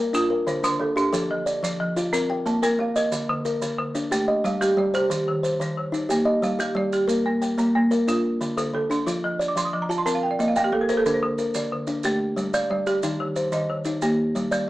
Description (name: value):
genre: southern african traditional, mbira-style interlocking cycle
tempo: 121 BPM (dotted quarters)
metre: 12/8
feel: straight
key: Bb major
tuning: A4 = 439 Hz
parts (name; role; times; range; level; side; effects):
- folk marimba with hard mallets; arpeggios; 0.0-14.7 s; D3 to Eb6; -24 LUFS; right 1 dB; none
- kalimba; arpeggios; 0.0-14.7 s; D3 to G5; -24 LUFS; left 1 dB; none
- maracas; percussion; 0.1-14.7 s; none; -36 LUFS; right 2 dB; none
room: wet studio reverb, RT60 0.6 s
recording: heard from further back in the room, small speaker sound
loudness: -21 LUFS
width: side -16 dB against mid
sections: 0.0-7.1 A section; 7.1-14.7 A section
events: marimba fill 9.3-11.1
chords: 0.1 Dm; 1.1 F; 2.1 Bb5; 3.1 Dm; 4.1 G5; 5.1 Eb; 6.1 Gm; 7.1 Bb; 8.1 Dm; 9.1 F; 10.1 Bb5; 11.1 Bbadd9/D; 12.0 G5; 13.0 Eb; 14.0 Gm